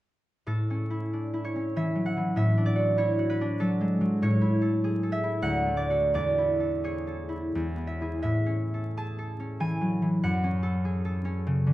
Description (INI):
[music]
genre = classical, solo harp piece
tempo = 76-101 BPM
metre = 3/4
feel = rubato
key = A major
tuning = A4 = 436 Hz
[part]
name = concert harp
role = solo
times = 0.5-11.7 s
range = D2 to A5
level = -25 LUFS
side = equal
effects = none
[sound]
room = moderate recital hall reverb, RT60 1.9 s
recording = dark, warm production, vinyl crackle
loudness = -25 LUFS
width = side -15 dB against mid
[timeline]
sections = 0.5-11.7 A section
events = none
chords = 0.5 A; 2.4 D/A; 4.2 A; 5.4 D; 6.1 A/E; 7.5 E; 8.2 A; 10.2 F#m